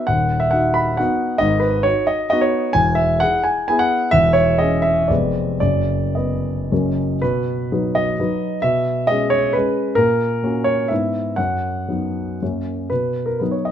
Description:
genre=classical, romantic triple-time dance for piano with dotted rhythms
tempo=102-147 BPM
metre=3/4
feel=rubato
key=B major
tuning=A4 = 440 Hz
part: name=warm concert grand piano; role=solo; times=0.0-13.7 s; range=D#1 to B5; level=-16 LUFS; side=equal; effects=none
room=light reverb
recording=close, detailed microphones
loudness=-16 LUFS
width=side -9 dB against mid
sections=0.0-7.2 A section; 7.2-13.7 B section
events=none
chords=0.1 B/D#; 1.4 G#m7; 2.7 E; 4.1 C#m/E; 5.1 Fdim7; 5.6 B/F#; 6.7 F#; 7.2 B; 8.6 C#m7/B; 10.0 F#/A#; 10.9 E/G#; 11.4 B/F#; 12.4 F#; 12.9 B

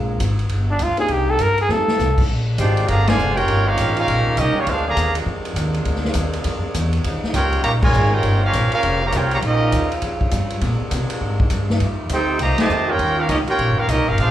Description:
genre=jazz, big band swing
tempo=202 BPM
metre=4/4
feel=swing 63% on 8ths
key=unclear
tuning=A4 = 438 Hz
part: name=dark concert grand piano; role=accompaniment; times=0.0-1.9 s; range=Ab3 to G4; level=-27 LUFS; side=left 2 dB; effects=slapback echo
part: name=upright bass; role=bass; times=0.0-14.3 s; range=Eb1 to C3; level=-21 LUFS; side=equal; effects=none
part: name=swinging big-band drum kit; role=drums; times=0.2-14.3 s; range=crash cymbal, hi-hat, kick drum, ride cymbal, snare drum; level=-24 LUFS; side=equal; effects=none
part: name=warm trumpet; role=melody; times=0.7-2.2 s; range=D4 to Bb4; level=-19 LUFS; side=equal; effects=slapback echo
part: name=bright saxophone section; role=sustained chords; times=2.3-14.3 s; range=C3 to F4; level=-29 LUFS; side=left 1 dB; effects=none
part: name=clear trumpet section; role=melody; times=2.6-5.1, 7.4-9.9, 12.1-14.3 s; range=Bb3 to Bb5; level=-20 LUFS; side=right 1 dB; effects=slapback echo
part: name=clear trombone section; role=second line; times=2.6-5.1, 7.3-9.9, 12.1-14.3 s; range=Bb2 to G4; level=-25 LUFS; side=right 3 dB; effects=slapback echo
room=light reverb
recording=live gig heard through the venue's PA, club reverb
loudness=-16 LUFS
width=side -12 dB against mid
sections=0.0-2.3 A section; 2.3-14.3 B section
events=trumpet solo 0.0-2.3; drum fill 1.7; band accent 3.0, 7.8, 12.5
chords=0.0 Bb9; 0.5 G5; 1.1 Cm7; 1.7 F7; 2.3 Bb9; 3.5 Eb9; 4.7 Bb9; 7.0 Eb9; 10.6 Bb9; 11.8 F9; 13.0 Eb9

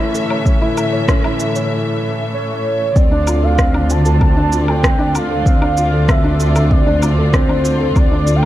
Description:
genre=piano and strings electronica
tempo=96 BPM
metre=4/4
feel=straight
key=D minor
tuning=A4 = 443 Hz
part: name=dark studio string section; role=sustained chords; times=0.0-8.5 s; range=A2 to E5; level=-22 LUFS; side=left 1 dB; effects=sidechain pumping
part: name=felt-muted upright piano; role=riff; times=0.0-8.5 s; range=C4 to C#5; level=-20 LUFS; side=equal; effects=tape echo
part: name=electronic shaker, woodblock and rim click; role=drums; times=0.1-8.5 s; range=none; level=-23 LUFS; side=left 1 dB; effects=none
part: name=electronic kick drum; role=drums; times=0.5-8.1 s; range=none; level=-14 LUFS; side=equal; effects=overdrive
part: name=warm velvety synth lead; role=melody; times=2.3-8.5 s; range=C5 to A5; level=-20 LUFS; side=right 1 dB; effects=chorus
part: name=dark studio double bass section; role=bass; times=3.0-8.5 s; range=D2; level=-16 LUFS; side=equal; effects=sidechain pumping
room=light reverb, small room ambience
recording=dark, warm production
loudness=-12 LUFS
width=side -14 dB against mid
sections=0.0-3.0 A section; 3.0-8.5 B section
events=build-up 0.0-3.0; break 1.7-3.0; drop 3.0-8.5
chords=0.0 A; 3.0 Dm7

